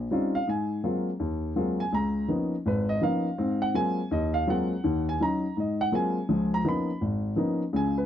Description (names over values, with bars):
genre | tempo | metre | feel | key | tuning
solo jazz | 165 BPM | 4/4 | swing 64% on 8ths | Ab mixolydian | A4 = 443 Hz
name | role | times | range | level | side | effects
warm baby grand piano | solo | 0.0-8.1 s | Ab1 to Cb6 | -25 LUFS | left 1 dB | none
room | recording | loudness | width
light reverb | dry, close 1970s-style studio recording | -25 LUFS | side -10 dB against mid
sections
0.5-8.1 A section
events
grand piano solo 0.0-8.1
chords
0.5 Ab13; 1.9 Db13; 3.4 Ab13; 4.8 Ebm7; 5.6 Ab13; 6.3 Db13